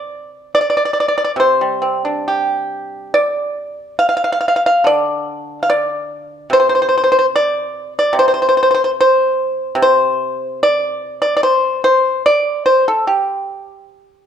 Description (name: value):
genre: chinese traditional, Chinese solo plucked strings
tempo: 73 BPM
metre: 4/4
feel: rubato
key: unclear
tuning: A4 = 440 Hz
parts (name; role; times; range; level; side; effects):
- pipa; solo; 0.0-14.3 s; C3 to F5; -13 LUFS; equal; none
room: moderate recital hall reverb, RT60 1.3 s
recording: dark, warm production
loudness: -13 LUFS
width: side -8 dB against mid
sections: 0.0-14.3 A section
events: none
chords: none